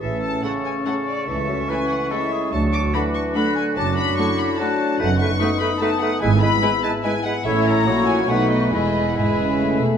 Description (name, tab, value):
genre	quick classical-period movement for symphony orchestra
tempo	144 BPM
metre	3/4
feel	rubato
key	A major, E major from 5.0 s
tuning	A4 = 440 Hz
part	warm studio violin section	melody	0.0-9.8 s	D5 to D6	-26 LUFS	left 5 dB	none
part	clear oboe	second line	0.0-9.8 s	F#4 to C#5	-30 LUFS	equal	none
part	concert flute	second line	0.0-9.8 s	B5 to F#6	-29 LUFS	left 4 dB	none
part	warm clarinet	second line	0.0-9.8 s	C#4 to E4	-29 LUFS	equal	none
part	mellow bassoon	accompaniment	0.0-9.8 s	C#3 to A3	-26 LUFS	right 3 dB	none
part	warm French horn section	sustained chords	0.0-10.0 s	F#3 to E4	-27 LUFS	left 4 dB	none
part	warm studio cello section	bass	0.0-10.0 s	C#2 to C#3	-25 LUFS	right 2 dB	none
part	warm studio double bass section	bass	0.0-9.8 s	E1 to D2	-26 LUFS	right 4 dB	none
part	rich studio violin section	second line	0.4-9.8 s	E4 to C#5	-30 LUFS	left 3 dB	none
part	warm studio viola section	accompaniment	0.4-9.8 s	G#3 to E4	-28 LUFS	equal	none
room	wet recital hall reverb, RT60 1.8 s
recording	none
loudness	-18 LUFS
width	side -8 dB against mid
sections	0.0-10.0 A section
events	none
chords	0.0 A; 1.3 A/C#; 2.5 D; 3.8 D/F#; 5.0 B7/F#; 6.2 E/G#; 7.5 A; 7.9 F#7/A#; 8.3 B7; 8.7 E